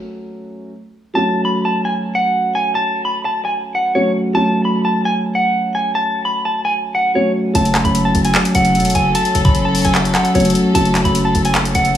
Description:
hip hop, trap; 150 BPM; 4/4; half-time; F# minor; A4 = 440 Hz
dark grand piano; accompaniment; 0.0-12.0 s; F#3 to F#4; -20 LUFS; right 1 dB
clean electric guitar; melody; 1.2-12.0 s; C#5 to B5; -17 LUFS; equal; tape echo
warm symphonic string section; sustained chords; 7.5-12.0 s; F#3 to A4; -18 LUFS; left 2 dB
distorted 808-style bass; bass; 7.5-12.0 s; E1 to F#1; -19 LUFS; equal; distortion
trap drum kit; drums; 7.5-12.0 s; handclaps, hi-hat, kick drum; -19 LUFS; equal
light reverb; small room ambience; -14 LUFS; side -10 dB against mid
0.0-1.1 A section; 1.1-12.0 B section
break 0.0-1.1; stop 0.0-1.1
0.0 F#m
0.35 0.75 | 1.15 1.55 1.95 2.35 | 2.75 3.15 3.55 3.95 | 4.35 4.75 5.15 5.55 | 5.95 6.35 6.75 7.15 | 7.55 7.95 8.35 8.75 | 9.15 9.55 9.95 10.35 | 10.75 11.15 11.55 11.95

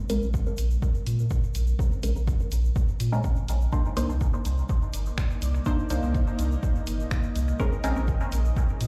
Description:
dub techno; 124 BPM; 4/4; straight; A4 = 443 Hz
filtered dub chord stab; stabs; 0.0-8.0 s; Ab3 to C5; -36 LUFS; equal; phaser, sidechain pumping, dub echo
soft dub sub bass; bass; 0.1-8.9 s; G1 to Bb2; -27 LUFS; equal; sidechain pumping
punchy analog drum machine; drums; 0.1-8.9 s; finger snaps, hi-hat; -41 LUFS; equal; dub echo
egg shaker; percussion; 0.1-8.9 s; -49 LUFS; equal
electronic kick drum; drums; 0.3-8.7 s; -28 LUFS; equal
granular cloud pad; sustained chords; 4.7-8.9 s; Ab3 to Eb5; -38 LUFS; equal; built-in reverb, sidechain pumping
little or no reverb; played on a big sound system in a bare room, large studio reverb; -26 LUFS; mono
0.0-8.9 A section
0.0 Bbm9; 3.7 Cm9; 7.6 Bbm9
0.34 0.82 1.31 | 1.79 2.27 2.76 3.24 | 3.73 4.21 4.69 5.18 | 5.66 6.14 6.63 7.11 | 7.60 8.08 8.56

